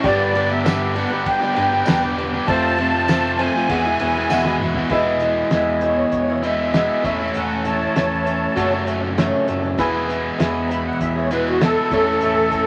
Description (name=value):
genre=folk rock and heartland rock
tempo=99 BPM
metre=4/4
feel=straight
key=unclear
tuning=A4 = 440 Hz
part: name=musette accordion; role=melody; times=0.0-12.7 s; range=F#4 to B5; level=-24 LUFS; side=equal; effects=none
part: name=clear upright piano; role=accompaniment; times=0.0-12.7 s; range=E4 to B5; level=-30 LUFS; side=equal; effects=none
part: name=picked swing-style acoustic guitar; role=accompaniment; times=0.0-12.7 s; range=F#2 to C5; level=-25 LUFS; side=equal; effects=none
part: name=bright tonewheel organ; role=sustained chords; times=0.0-4.9 s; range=C4 to D5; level=-37 LUFS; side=equal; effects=none
part: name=crunchy overdriven guitar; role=riff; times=0.0-12.7 s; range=E2 to G4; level=-25 LUFS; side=equal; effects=none
part: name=picked electric bass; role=bass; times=0.0-12.7 s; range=E1 to E2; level=-33 LUFS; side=equal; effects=none
part: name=cloth-damped thuddy drum kit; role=drums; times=0.0-12.7 s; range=crash cymbal, hi-hat, kick drum, ride cymbal, snare drum, toms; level=-27 LUFS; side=equal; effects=none
part: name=tambourine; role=percussion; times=0.7-4.4 s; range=none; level=-42 LUFS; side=equal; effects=none
room=moderate studio reverb, RT60 0.8 s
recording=vinyl crackle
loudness=-19 LUFS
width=mono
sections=0.0-4.9 A section; 4.9-12.7 B section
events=upright piano fill 4.0-4.9; drum fill 4.3-4.9; accordion solo 4.9-12.7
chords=0.0 G; 2.5 F; 3.7 Eadd9; 4.9 E; 7.0 A/E; 8.6 F#m; 9.8 E; 11.9 A/E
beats=| 0.05 0.66 1.26 1.87 | 2.48 3.09 3.70 4.31 | 4.92 5.52 6.13 6.74 | 7.35 7.96 8.57 9.18 | 9.78 10.39 11.00 11.61 | 12.22